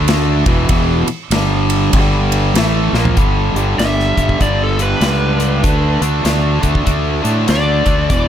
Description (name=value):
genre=blues rock power trio and southern rock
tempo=97 BPM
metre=4/4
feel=swing 62% on 8ths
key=unclear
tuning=A4 = 439 Hz
part: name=overdriven electric guitar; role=riff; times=0.0-8.3 s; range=E2 to D4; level=-17 LUFS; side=equal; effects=none
part: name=fuzz fingered electric bass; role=bass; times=0.0-8.3 s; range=E1 to A2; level=-16 LUFS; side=equal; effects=overdrive
part: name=big rock drum kit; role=drums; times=0.1-8.3 s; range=hi-hat, kick drum, ride cymbal, snare drum, toms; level=-18 LUFS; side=equal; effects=none
part: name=overdriven slide guitar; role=melody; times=3.8-8.3 s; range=A4 to E5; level=-19 LUFS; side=left 1 dB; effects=none
room=little or no reverb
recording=none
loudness=-12 LUFS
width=side -10 dB against mid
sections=0.0-3.2 A section; 3.2-8.3 B section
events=drum fill 2.9-3.2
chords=0.4 E5; 1.3 G5; 2.5 Fadd11/A; 3.2 G; 5.6 D5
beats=0.08 | 0.70 1.31 1.93 2.55 | 3.17 3.78 4.40 5.02 | 5.63 6.25 6.87 7.49 | 8.10